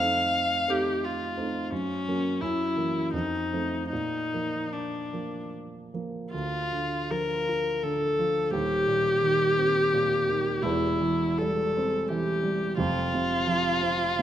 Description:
classical, romantic duo for viola and grand piano; 73-88 BPM; 3/4; rubato; Bb major; A4 = 440 Hz
rich viola; melody; 0.0-14.2 s; Db4 to F5; -26 LUFS; left 1 dB
dark grand piano; accompaniment; 0.0-14.2 s; Eb1 to F4; -30 LUFS; right 3 dB
moderate recital hall reverb, RT60 1.7 s; -24 LUFS; side -11 dB against mid
0.0-6.3 A section; 6.3-14.2 B section
0.0 F7; 1.7 Gb; 2.4 Gb7; 3.1 F7; 3.9 Bb; 6.3 Bb/D; 8.5 Cm7/Eb; 10.6 C/E; 12.8 F5
0.33 1.02 | 1.71 2.41 3.12 | 3.91 4.72 5.54 | 6.33 7.11 7.83 | 8.53 9.23 9.92 | 10.62 11.39 12.09 | 12.78 13.49 14.20

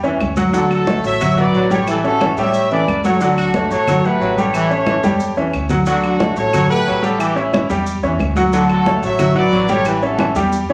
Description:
latin, salsa; 180 BPM; 4/4; straight; D major; A4 = 439 Hz
brilliant trombone section; second line; 0.0-10.7 s; D3 to G3; -25 LUFS; equal
bright baby grand piano; accompaniment; 0.0-10.7 s; C#3 to G5; -20 LUFS; equal
upright bass; bass; 0.0-10.7 s; A1 to A2; -29 LUFS; equal
congas; percussion; 0.0-10.7 s; -24 LUFS; equal
maracas; percussion; 0.0-10.7 s; -41 LUFS; equal
claves; percussion; 0.2-10.4 s; -34 LUFS; equal
clear horn section; melody; 0.5-10.3 s; C#4 to E5; -22 LUFS; equal
wet large studio reverb, RT60 0.9 s; vinyl crackle; -16 LUFS; mono
0.0-5.9 A section; 5.9-10.7 A section
drum fill 4.9-5.9
0.0 A (rootless); 0.5 Dmaj7; 1.9 A7; 3.2 Dmaj7; 4.5 A7; 5.9 Dmaj7; 7.2 A7; 8.5 Dmaj7; 9.9 A7
0.21 | 0.54 0.88 1.21 1.54 | 1.88 2.21 2.54 2.88 | 3.21 3.54 3.87 4.21 | 4.54 4.87 5.21 5.54 | 5.87 6.20 6.54 6.87 | 7.20 7.53 7.87 8.20 | 8.53 8.86 9.20 9.53 | 9.86 10.20 10.53

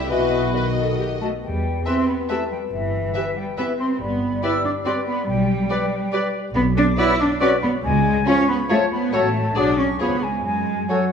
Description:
cinematic; 140 BPM; 3/4; straight; E minor, F# minor from 6.6 s; A4 = 440 Hz
rich studio violin section; melody; 0.0-11.0 s; C#5 to E5; -32 LUFS; left 5 dB
warm studio violin section; second line; 0.0-11.0 s; E4 to B4; -35 LUFS; left 5 dB
warm studio viola section; accompaniment; 0.0-11.0 s; E4 to B4; -29 LUFS; left 2 dB
dark studio double bass section; bass; 0.0-10.8 s; G1 to F#2; -26 LUFS; right 1 dB
warm studio cello section; bass; 0.0-11.1 s; B2 to E4; -23 LUFS; right 1 dB
mellow bassoon; accompaniment; 0.1-11.1 s; D#3 to G3; -28 LUFS; left 1 dB
silver concert flute; second line; 1.2-11.1 s; E5 to E6; -27 LUFS; left 2 dB
mellow French horn section; sustained chords; 1.4-11.0 s; E#4 to D5; -28 LUFS; left 5 dB
bright clarinet; second line; 1.9-11.1 s; G#4 to C#5; -30 LUFS; left 3 dB
bright oboe; second line; 1.9-11.1 s; C#5 to E5; -31 LUFS; equal
wet scoring stage reverb, RT60 1.7 s; -18 LUFS; side -7 dB against mid
0.0-1.4 A section; 1.4-11.1 B section
0.1 B; 1.4 Em; 2.7 Em/G; 4.0 G; 5.3 G/B; 6.6 Bm; 7.8 C#; 9.1 F#m/A; 9.6 G#m7b5/B; 10.0 C#7; 10.4 F#m
| 0.10 0.55 0.99 | 1.43 1.86 2.30 | 2.73 3.15 3.58 | 4.00 4.43 4.85 | 5.28 5.70 6.13 | 6.55 6.98 7.41 | 7.84 8.27 8.70 | 9.13 9.56 10.00 | 10.45 10.89

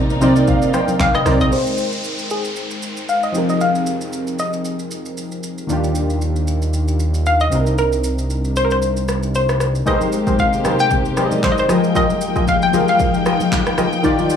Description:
amapiano; 115 BPM; 4/4; swing 55% on 16ths; A4 = 443 Hz
warm analog keys; accompaniment; 0.0-14.4 s; C3 to Bb5; -20 LUFS; left 1 dB; chorus, low-pass filter
dark studio string section; sustained chords; 0.0-1.5, 9.9-14.4 s; C3 to G5; -23 LUFS; left 3 dB
woody log drum bass; bass; 0.0-1.5 s; Bb1 to C2; -21 LUFS; right 1 dB
deep house drum kit; drums; 0.1-14.4 s; handclaps, hi-hat, kick drum, rim click, shaker; -24 LUFS; equal; overdrive
percussive organ stab; stabs; 0.2-1.4, 9.9-14.2 s; Eb4 to Eb5; -25 LUFS; right 2 dB; chorus, analog delay
congas; percussion; 0.2-1.4, 10.0-14.3 s; -26 LUFS; left 4 dB
hollow square pluck; melody; 1.0-13.7 s; Ab4 to G5; -20 LUFS; left 1 dB; chorus, low-pass filter, analog delay
downlifter; sound effects; 1.5-5.7 s; -30 LUFS; equal
fat analog bass; bass; 5.7-9.8 s; C2 to Eb2; -18 LUFS; equal
digital ambience; dry, gritty hardware recording, small room reverb; -15 LUFS; side -8 dB against mid
0.0-1.5 A section; 1.5-9.9 B section; 9.9-14.4 C section
drop 0.0-1.5; synth keys fill 0.0-1.5; filter sweep 1.5-9.9
0.0 Cm7; 1.5 Abmaj9; 3.3 Fm11; 5.7 Ebmaj9; 7.5 Cm7; 9.9 Abmaj9; 11.7 Fm11
0.48 1.00 | 1.52 2.04 2.56 3.09 | 3.61 4.13 4.65 5.17 | 5.70 6.22 6.74 7.26 | 7.78 8.30 8.82 9.35 | 9.87 10.39 10.91 11.43 | 11.96 12.48 13.00 13.52 | 14.04

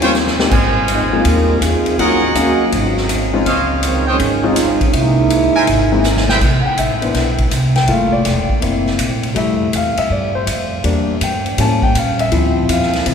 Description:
jazz, big band swing; 163 BPM; 4/4; swing 66% on 8ths; C major from 6.4 s; A4 = 436 Hz
muted trombone section; second line; 0.0-6.1 s; Eb3 to Bb4; -19 LUFS; right 3 dB
clear grand piano; accompaniment; 0.0-13.1 s; F3 to A5; -18 LUFS; left 3 dB
bright trumpet section; stabs; 0.0-6.4 s; Bb4 to G#5; -20 LUFS; right 1 dB
upright bass; bass; 0.0-13.1 s; E1 to Bb2; -19 LUFS; equal
swinging big-band drum kit; drums; 0.0-13.1 s; crash cymbal, hi-hat, kick drum, ride cymbal, snare drum; -20 LUFS; equal
wet cathedral reverb, RT60 6.2 s; recorded in a church or concert hall; -13 LUFS; side -7 dB against mid
0.0-6.4 A section; 6.4-13.1 B section
trombone section solo 0.0-6.4; drum fill 0.1-0.5, 6.0-6.4; grand piano solo 6.4-13.1
0.0 Eb13; 0.5 Ab6; 2.0 Ebm7; 2.7 Ab7; 3.5 Dbmaj9; 4.9 C7alt; 6.4 Cmaj7; 7.9 Gm9; 8.6 F#7#11; 9.4 Fmaj9; 10.8 Em7b5; 11.6 A7b9; 12.3 Dm9
0.14 | 0.51 0.88 1.25 1.61 | 1.99 2.35 2.72 3.09 | 3.46 3.83 4.20 4.57 | 4.94 5.31 5.67 6.04 | 6.41 6.78 7.15 7.52 | 7.89 8.26 8.62 8.99 | 9.36 9.73 10.10 10.47 | 10.84 11.21 11.58 11.95 | 12.31 12.68 13.05

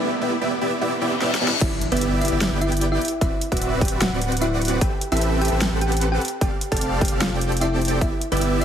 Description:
future bass; 150 BPM; 4/4; half-time; G major; A4 = 440 Hz
dense compressed supersaw; riff; 0.0-8.6 s; B3 to G5; -24 LUFS; right 1 dB; sidechain pumping
riser, reverse cymbal and impact; sound effects; 0.0-3.2 s; -28 LUFS; left 1 dB
big-room dance drum kit; drums; 1.2-8.6 s; crash cymbal, hi-hat, snare drum; -26 LUFS; equal; overdrive, high-pass filter on snare, high-pass filter on hats, high-pass filter on cymbals
thumb-piano-like synth pluck; melody; 1.6-8.6 s; B3 to A5; -27 LUFS; left 1 dB; chorus, sidechain pumping, ping-pong delay
saturated sub bass; bass; 1.6-8.6 s; D1 to A1; -24 LUFS; equal; sidechain pumping
electronic kick drum; drums; 1.6-8.1 s; -23 LUFS; equal; overdrive
moderate digital room reverb, RT60 1.2 s; heavily compressed radio sound; -19 LUFS; side -9 dB against mid
0.0-1.6 A section; 1.6-8.6 B section
build-up 0.0-1.6; riser 0.0-1.6; break 0.0-1.6; reverse cymbal 0.8-1.6; drum fill 1.2-1.6; drop 1.6-8.6; impact 1.6-3.2
0.0 G6; 3.0 D13; 4.8 Am9; 6.2 F69; 8.0 G6
| 0.01 0.41 0.81 1.21 | 1.61 2.01 2.41 2.81 | 3.21 3.61 4.01 4.41 | 4.81 5.21 5.61 6.01 | 6.41 6.81 7.21 7.61 | 8.01 8.41

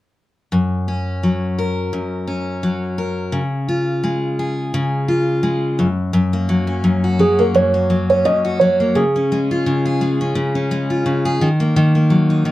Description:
pop; 86 BPM; 4/4; swing 55% on 16ths; F# major; A4 = 436 Hz
picked steel-string acoustic guitar; accompaniment; 0.5-12.5 s; F#2 to A#4; -16 LUFS; left 1 dB
dark upright piano; melody; 7.2-9.6 s; G#4 to D#5; -15 LUFS; right 2 dB
light reverb; -15 LUFS; side -16 dB against mid
0.5-6.1 A section; 6.1-12.5 B section
0.5 F#; 3.3 C#; 5.8 N.C.; 6.1 F#; 8.9 C#; 11.4 D#m
| 0.53 1.23 1.93 2.63 | 3.33 4.04 4.74 5.44 | 6.14 6.84 7.54 8.24 | 8.94 9.64 10.35 11.04 | 11.75 12.45

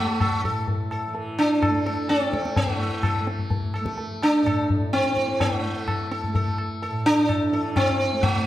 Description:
indian classical, Hindustani; 127 BPM; 3/4; straight; A4 = 440 Hz
sitar; melody; 0.0-8.5 s; A3 to A4; -23 LUFS; equal
tanpura; drone; 0.0-8.5 s; A2 to A3; -32 LUFS; right 1 dB
tabla; percussion; 0.2-8.4 s; -26 LUFS; left 2 dB
wet recital hall reverb, RT60 1.6 s; -21 LUFS; side -13 dB against mid
0.0-2.6 A section; 2.6-8.5 B section
0.20 0.68 | 1.15 1.62 2.10 | 2.57 3.04 3.52 | 3.99 4.46 4.94 | 5.41 5.88 6.35 | 6.82 7.29 7.77 | 8.24

